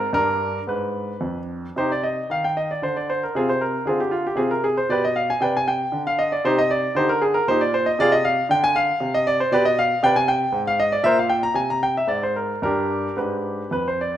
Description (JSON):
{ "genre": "classical, baroque-style suite movement for grand piano", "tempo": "109-120 BPM", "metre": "3/4", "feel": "rubato", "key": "C minor", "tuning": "A4 = 438 Hz", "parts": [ { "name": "clear concert grand piano", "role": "solo", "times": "0.0-14.2 s", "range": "F2 to Bb5", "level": "-19 LUFS", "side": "equal", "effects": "none" } ], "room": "moderate recital hall reverb, RT60 1.4 s", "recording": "none", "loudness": "-19 LUFS", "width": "side -11 dB against mid", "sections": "0.0-1.8 A section; 1.8-14.2 A section", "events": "none", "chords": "0.1 G; 1.8 Cm; 3.3 F5/C; 4.9 G/B; 6.4 Cm; 8.0 Dm7b5/C; 9.5 G/B; 11.0 C7/Bb; 12.1 N.C.; 12.6 G" }